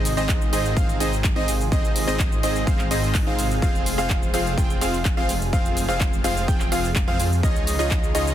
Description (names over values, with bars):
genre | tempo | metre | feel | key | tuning
EDM, festival progressive house | 126 BPM | 4/4 | straight | Ab major | A4 = 440 Hz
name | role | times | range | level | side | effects
lush unison pad | sustained chords | 0.0-8.3 s | C3 to Ab4 | -31 LUFS | equal | chorus, phaser, sidechain pumping
bright grand piano | arpeggios | 0.0-8.3 s | Eb5 to G5 | -29 LUFS | right 1 dB | sidechain pumping, tape echo
supersaw stab | riff | 0.0-8.3 s | C4 to G5 | -26 LUFS | right 1 dB | sidechain pumping, tape echo
detuned saw bass | bass | 0.0-8.3 s | F1 to F2 | -27 LUFS | equal | sidechain pumping
big-room dance drum kit | drums | 0.1-8.3 s | handclaps, hi-hat, shaker | -29 LUFS | equal | none
electronic kick drum | drums | 0.3-8.0 s | none | -22 LUFS | equal | none
room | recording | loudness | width
light reverb, digital ambience | dense, heavily limited modern master | -19 LUFS | side -11 dB against mid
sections
0.0-8.3 A section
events
none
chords
0.0 Ab; 3.6 Fm; 7.4 Dbadd9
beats
0.29 0.77 1.24 | 1.72 2.20 2.67 3.15 | 3.62 4.10 4.58 5.05 | 5.53 6.00 6.48 6.96 | 7.43 7.91